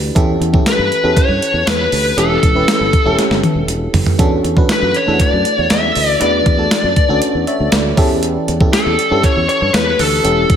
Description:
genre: 1980s-style pop.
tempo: 119 BPM.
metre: 4/4.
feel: straight.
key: unclear.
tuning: A4 = 438 Hz.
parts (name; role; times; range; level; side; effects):
FM electric piano; accompaniment; 0.0-10.6 s; E3 to E5; -18 LUFS; right 1 dB; chorus, slapback echo.
sustaining fretless electric bass; bass; 0.0-10.6 s; E1 to G2; -20 LUFS; equal; tube saturation, lush chorus.
clean 12-bit digital drum machine; drums; 0.2-10.6 s; hi-hat, kick drum, snare drum, tambourine, toms; -15 LUFS; equal; none.
smooth overdriven lead guitar; melody; 0.7-10.6 s; A4 to E5; -16 LUFS; left 2 dB; digital delay.
room: moderate lush hall reverb, RT60 1.6 s, digital ambience.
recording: big arena sound.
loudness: -11 LUFS.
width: side -8 dB against mid.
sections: 0.0-10.6 A section.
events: drum fill 3.2-4.2.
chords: 0.2 A7; 4.2 Dmaj7; 8.0 A7.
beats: | 0.16 0.66 1.17 1.67 | 2.18 2.68 3.18 3.69 | 4.19 4.70 5.20 5.71 | 6.21 6.71 7.22 7.72 | 8.23 8.73 9.23 9.74 | 10.24.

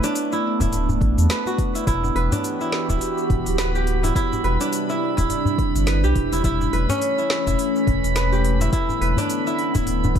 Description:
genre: organic downtempo.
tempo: 105 BPM.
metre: 4/4.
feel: swing 59% on 16ths.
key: E minor.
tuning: A4 = 441 Hz.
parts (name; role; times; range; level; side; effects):
warbly tape-like pad; sustained chords; 0.0-10.2 s; C3 to G4; -25 LUFS; right 1 dB; chorus, built-in reverb, phaser, sidechain pumping.
kora; arpeggios; 0.0-10.2 s; C#4 to B4; -24 LUFS; equal; ping-pong delay.
afro-pop drum kit; drums; 0.0-10.2 s; hi-hat, shaker, snare drum; -30 LUFS; left 1 dB; none.
round analog bass; bass; 0.6-10.2 s; D1 to E2; -22 LUFS; equal; sidechain pumping.
electronic kick drum; drums; 0.6-10.2 s; none; -24 LUFS; equal; none.
djembe; percussion; 0.6-10.2 s; none; -27 LUFS; left 2 dB; none.
drifting glass-harmonics texture; texture; 2.6-10.2 s; B5; -33 LUFS; right 4 dB; chorus, built-in reverb.
room: light reverb.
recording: dark, warm production.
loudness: -19 LUFS.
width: side -8 dB against mid.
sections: 0.0-10.2 A section.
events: none.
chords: 0.0 Bm7; 1.9 Emadd9; 4.2 Cadd9; 6.4 A/E; 8.7 Bm7.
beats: 0.15 0.73 1.30 | 1.87 2.44 3.01 3.58 | 4.15 4.73 5.30 5.87 | 6.44 7.01 7.58 8.15 | 8.73 9.30 9.87.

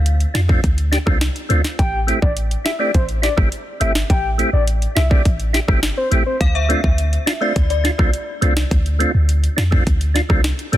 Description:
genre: dancehall.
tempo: 104 BPM.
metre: 4/4.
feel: straight.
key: unclear.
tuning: A4 = 440 Hz.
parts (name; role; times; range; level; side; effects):
clean 808-style bass; bass; 0.0-10.8 s; G1 to F2; -18 LUFS; equal; none.
island pop drum kit; drums; 0.1-10.8 s; hi-hat, kick drum, rim click, snare drum; -18 LUFS; equal; overdrive.
percussive tonewheel organ; accompaniment; 0.3-10.8 s; A3 to G4; -23 LUFS; right 1 dB; overdrive, chorus vibrato, fast rotary speaker, sidechain pumping.
soft octave-layered synth lead; melody; 1.8-6.4 s; C5 to G5; -24 LUFS; left 2 dB; chorus, ping-pong delay.
synth chime; second line; 6.4-8.8 s; D5 to F5; -26 LUFS; left 2 dB; ensemble chorus, phaser, ping-pong delay.
room: digital ambience.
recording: dense, heavily limited modern master.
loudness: -15 LUFS.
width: side -13 dB against mid.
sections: 0.0-10.8 A section.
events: none.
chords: 0.0 Dm7; 1.8 Am7; 6.4 Dm7.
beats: 0.06 0.64 1.21 | 1.79 2.37 2.94 3.52 | 4.10 4.67 5.25 5.83 | 6.41 6.98 7.56 8.14 | 8.71 9.29 9.87 10.44.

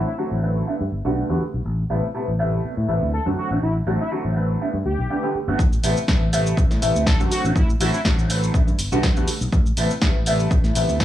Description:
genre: filtered disco house.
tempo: 122 BPM.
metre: 4/4.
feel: swing 54% on 16ths.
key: A dorian.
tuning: A4 = 440 Hz.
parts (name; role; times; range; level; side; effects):
analog synth brass; melody; 0.0-0.1, 3.1-8.0, 11.0 s; E4 to A4; -29 LUFS; left 1 dB; chorus, sidechain pumping, low-pass filter, tape echo.
clear baby grand piano; accompaniment; 0.0-11.0 s; C3 to B4; -24 LUFS; equal; phaser, vintage 12-bit sampler grit, sidechain pumping, low-pass filter.
fingered electric bass; bass; 0.0-11.0 s; G1 to A2; -23 LUFS; equal; sidechain pumping, low-pass filter.
electronic kick drum; drums; 5.6-11.0 s; none; -19 LUFS; equal; none.
punchy analog drum machine; drums; 5.6-11.0 s; cabasa, hi-hat, snare drum; -26 LUFS; equal; sidechain pumping on perc, sidechain pumping on hats.
room: little or no reverb.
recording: dry, gritty hardware recording, small room ambience.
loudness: -18 LUFS.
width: side -12 dB against mid.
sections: 0.0-5.6 A section; 5.6-11.0 B section.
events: filter sweep 0.0-5.6; drop 5.6-11.0.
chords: 0.0 D7; 0.7 Gmaj9; 1.7 Am9; 3.4 D7/A; 4.6 Gadd9; 5.6 Am9; 7.3 D7/A; 8.5 Gmaj9; 9.5 Am9.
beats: 0.18 0.67 1.17 | 1.66 2.15 2.64 3.13 | 3.62 4.12 4.61 5.10 | 5.59 6.08 6.58 7.07 | 7.56 8.05 8.54 9.04 | 9.53 10.02 10.51 11.00.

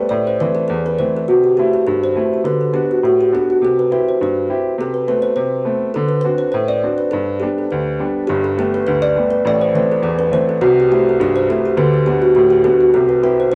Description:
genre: celtic folk.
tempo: 206 BPM.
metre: 4/4.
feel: swing 55% on 8ths.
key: G major.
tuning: A4 = 440 Hz.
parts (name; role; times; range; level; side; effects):
kalimba; melody; 0.0-13.6 s; F#4 to D5; -17 LUFS; equal; none.
bright upright piano; accompaniment; 0.0-13.6 s; G1 to G4; -22 LUFS; equal; none.
room: wet studio reverb, RT60 0.6 s.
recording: worn, warbling old tape, cassette tape, warbly pitch drift.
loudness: -16 LUFS.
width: mono.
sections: 0.0-8.3 A section; 8.3-13.6 A section.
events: none.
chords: 0.1 Am; 1.3 C6; 2.4 D6; 3.6 C; 4.8 Amadd9/C; 5.9 D7; 7.1 G; 8.3 Gadd9; 9.4 Am; 10.6 C6; 11.8 D6; 12.9 C.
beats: | 0.11 0.40 0.69 0.99 | 1.28 1.57 1.86 2.15 | 2.45 2.74 3.03 3.32 | 3.61 3.90 4.20 4.49 | 4.78 5.07 5.36 5.66 | 5.95 6.24 6.53 6.82 | 7.11 7.41 7.70 7.99 | 8.28 8.57 8.86 9.15 | 9.44 9.73 10.03 10.32 | 10.61 10.90 11.19 11.48 | 11.77 12.06 12.35 12.64 | 12.93 13.22 13.51.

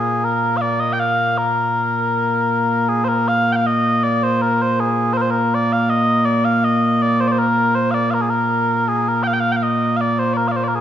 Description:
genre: scottish traditional, Scottish pipe music.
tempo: 80 BPM.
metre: 2/4.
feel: straight.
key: Bb mixolydian.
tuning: A4 = 440 Hz.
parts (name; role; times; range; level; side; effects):
mellow small bagpipes; solo; 0.0-10.8 s; Bb2 to G5; -15 LUFS; equal; none.
room: moderate scoring stage reverb, RT60 1.8 s.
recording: minimal, uncompressed stereo recording.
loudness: -15 LUFS.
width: side -10 dB against mid.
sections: 0.0-2.9 A section; 2.9-10.8 B section.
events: none.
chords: none.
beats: 0.64 | 1.39 2.14 | 2.89 3.64 | 4.39 5.14 | 5.89 6.64 | 7.39 8.14 | 8.89 9.64 | 10.39.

